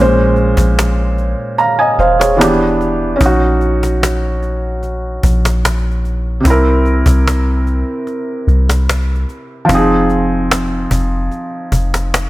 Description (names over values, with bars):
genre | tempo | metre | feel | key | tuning
contemporary R&B | 74 BPM | 4/4 | straight | Bb minor | A4 = 440 Hz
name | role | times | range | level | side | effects
felt-muted upright piano | accompaniment | 0.0-12.3 s | Bb2 to Bb5 | -15 LUFS | right 1 dB | none
soft 808-style bass | bass | 0.0-12.3 s | E1 to C2 | -15 LUFS | equal | none
cajon | drums | 0.4-12.3 s | none | -19 LUFS | equal | none
room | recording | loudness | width
light reverb, small room reverb | none | -12 LUFS | side -17 dB against mid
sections
0.0-12.3 A section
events
none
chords
0.0 Bbm9; 2.4 Em7; 3.2 Ebm7/Bb; 6.5 C7; 9.7 Fm7